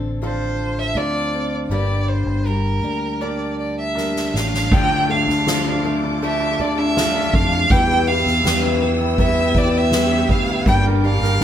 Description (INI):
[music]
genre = pop ballad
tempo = 81 BPM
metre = 4/4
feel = straight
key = D minor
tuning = A4 = 439 Hz
[part]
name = clear baby grand piano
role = accompaniment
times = 0.0-11.4 s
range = D3 to Bb4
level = -24 LUFS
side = equal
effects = none
[part]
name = picked steel-string acoustic guitar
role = arpeggios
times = 0.0-11.4 s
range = G2 to A4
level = -26 LUFS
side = left 5 dB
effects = none
[part]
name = fingered electric bass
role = bass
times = 0.0-11.4 s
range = G1 to F2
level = -23 LUFS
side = equal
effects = none
[part]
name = warm violin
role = melody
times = 0.2-11.4 s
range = Bb4 to G5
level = -22 LUFS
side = right 2 dB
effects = none
[part]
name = soft-mallet drum kit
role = drums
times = 4.0-11.4 s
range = crash cymbal, kick drum, ride cymbal, snare drum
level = -21 LUFS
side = equal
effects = none
[part]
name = muted studio string section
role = sustained chords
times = 4.7-11.4 s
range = F4 to E6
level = -28 LUFS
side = right 1 dB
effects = none
[sound]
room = moderate stone room reverb, RT60 0.9 s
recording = band playing live in one room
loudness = -16 LUFS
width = side -10 dB against mid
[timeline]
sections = 0.0-4.7 A section; 4.7-11.4 B section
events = drum fill 4.0-4.7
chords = 0.0 Dm7; 1.7 Gm; 4.7 Dm; 7.7 Em; 10.7 Gm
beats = 0.22 0.96 | 1.71 2.45 3.21 3.96 | 4.72 5.47 6.22 6.96 | 7.70 8.44 9.18 9.92 | 10.66 11.40